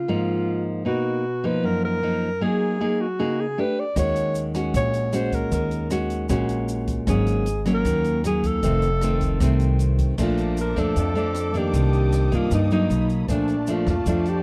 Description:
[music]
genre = bossa nova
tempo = 154 BPM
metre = 4/4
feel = straight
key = Bb major from 10.2 s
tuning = A4 = 440 Hz
[part]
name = mellow alto saxophone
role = melody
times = 0.0-14.4 s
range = D4 to D5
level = -28 LUFS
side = equal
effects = none
[part]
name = nylon-string guitar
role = accompaniment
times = 0.0-14.4 s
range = F2 to Ab4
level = -26 LUFS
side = equal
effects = none
[part]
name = upright bass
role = bass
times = 4.0-14.4 s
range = F1 to G2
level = -26 LUFS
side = equal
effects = none
[part]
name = open jazz drum kit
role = drums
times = 4.0-14.3 s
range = crash cymbal, hi-hat, kick drum, rim click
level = -33 LUFS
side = equal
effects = none
[part]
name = tube shaker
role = percussion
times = 4.0-14.4 s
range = none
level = -47 LUFS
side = equal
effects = none
[part]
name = muted studio string section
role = sustained chords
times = 10.2-14.4 s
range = A3 to Eb6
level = -39 LUFS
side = equal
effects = none
[sound]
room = small room ambience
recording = dry, close 1970s-style studio recording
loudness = -23 LUFS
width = mono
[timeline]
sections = 0.0-10.2 A section; 10.2-14.4 B section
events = none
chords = 0.0 Db69 (rootless); 0.9 Cbmaj7#11; 2.4 Gb69; 3.6 A9sus4; 4.0 Ebm7; 7.1 Ab9sus4; 8.6 F7; 10.2 Bbmaj7; 11.7 Cm9; 12.9 Bmaj7; 13.3 Bbmaj7

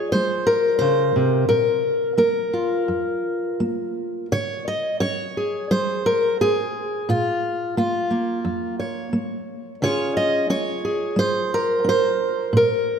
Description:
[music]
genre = folk, solo fingerstyle acoustic guitar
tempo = 88 BPM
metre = 4/4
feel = rubato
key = unclear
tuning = A4 = 440 Hz
[part]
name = fingerpicked steel-string acoustic guitar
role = solo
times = 0.0-13.0 s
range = F2 to Eb5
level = -19 LUFS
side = equal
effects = none
[sound]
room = wet concert hall reverb, RT60 2.3 s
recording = none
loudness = -19 LUFS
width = side -6 dB against mid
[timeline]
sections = 0.0-4.3 A section; 4.3-13.0 A section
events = none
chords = 0.0 Db; 1.5 Bb5; 4.3 Db5; 7.1 Bbm; 9.8 Db

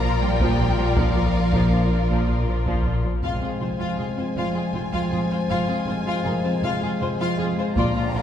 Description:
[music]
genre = cinematic, hybrid orchestral and electronic film score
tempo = 53 BPM (dotted quarters)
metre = 6/8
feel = straight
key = F dorian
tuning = A4 = 440 Hz
[part]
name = warm symphonic violin section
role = melody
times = 0.0-8.2 s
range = F5 to Bb5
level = -34 LUFS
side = left 3 dB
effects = none
[part]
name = warm symphonic violin section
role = second line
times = 0.0-8.2 s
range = F4 to F5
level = -29 LUFS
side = left 3 dB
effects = none
[part]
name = clear symphonic viola section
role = accompaniment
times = 0.0-8.2 s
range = F3 to F4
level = -29 LUFS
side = left 1 dB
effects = none
[part]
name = harp-like synth pluck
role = arpeggios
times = 0.0-8.2 s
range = F3 to Bb4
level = -29 LUFS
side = right 1 dB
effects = chorus, ping-pong delay
[part]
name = punchy sub bass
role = bass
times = 0.0-3.2 s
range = Bb1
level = -26 LUFS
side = equal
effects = none
[part]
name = warm symphonic cello section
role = bass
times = 0.0-8.2 s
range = F2 to Bb3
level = -28 LUFS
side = equal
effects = none
[part]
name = warm symphonic double bass section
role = bass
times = 0.0-8.2 s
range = F1 to Bb1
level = -28 LUFS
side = right 1 dB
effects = none
[part]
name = felt-muted upright piano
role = texture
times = 0.0-8.2 s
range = none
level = barely audible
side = none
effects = none
[part]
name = solo taiko drums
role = drums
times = 0.4-8.2 s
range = none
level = -28 LUFS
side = equal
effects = none
[part]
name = mellow French horn section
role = sustained chords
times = 3.2-8.2 s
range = D3 to C4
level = -28 LUFS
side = left 4 dB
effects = none
[part]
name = riser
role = sound effects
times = 8.0-8.2 s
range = none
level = -35 LUFS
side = equal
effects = none
[sound]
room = wet concert hall reverb, RT60 2.2 s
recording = heard from further back in the room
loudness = -20 LUFS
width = side -9 dB against mid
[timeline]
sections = 0.0-3.2 A section; 3.2-8.2 B section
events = riser 8.0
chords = 0.0 Bb; 3.2 Fm

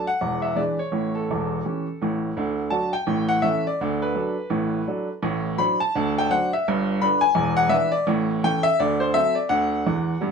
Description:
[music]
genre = jazz, stride piano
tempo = 168 BPM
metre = 4/4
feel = swing 61% on 8ths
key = D major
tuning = A4 = 439 Hz
[part]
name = clear upright piano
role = solo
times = 0.0-10.3 s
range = E1 to B5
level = -20 LUFS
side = equal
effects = none
[sound]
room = moderate studio reverb, RT60 0.7 s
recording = minimal, uncompressed stereo recording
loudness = -20 LUFS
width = side -6 dB against mid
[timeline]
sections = 0.0-10.3 A section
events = upright piano fill 9.9-10.3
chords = 0.2 E7; 0.9 A7; 2.4 D; 3.1 A; 3.8 D; 5.2 D7/A; 5.9 D7; 6.7 G; 7.4 E5; 8.1 A; 8.8 D7; 9.5 D

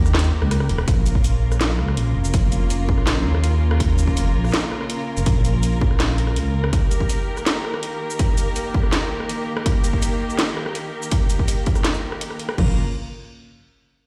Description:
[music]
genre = half-time drum and bass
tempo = 164 BPM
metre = 4/4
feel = half-time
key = Bb dorian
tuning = A4 = 439 Hz
[part]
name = muted studio string section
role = sustained chords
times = 0.0-12.8 s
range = Db3 to Bb4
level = -29 LUFS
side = equal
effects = vintage 12-bit sampler grit, sidechain pumping
[part]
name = dark detuned saw bass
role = bass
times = 0.0-6.7, 12.6-12.8 s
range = Eb1 to Eb2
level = -22 LUFS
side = equal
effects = none
[part]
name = drum and bass drum kit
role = drums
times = 0.1-12.6 s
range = hi-hat, rim click, shaker, snare drum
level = -27 LUFS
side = equal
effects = none
[part]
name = industrial drum kit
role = drums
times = 0.9-12.7 s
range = crash cymbal, kick drum, toms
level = -23 LUFS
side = equal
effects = none
[sound]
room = little or no reverb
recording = played on a big sound system in a bare room, stone room reverb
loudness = -21 LUFS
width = mono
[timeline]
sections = 0.9-12.6 A section; 12.6-14.0 B section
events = break 0.5-0.9; drum fill 0.5-0.9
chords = 0.0 Eb; 0.9 Bbm; 6.7 Eb; 12.6 Bbm

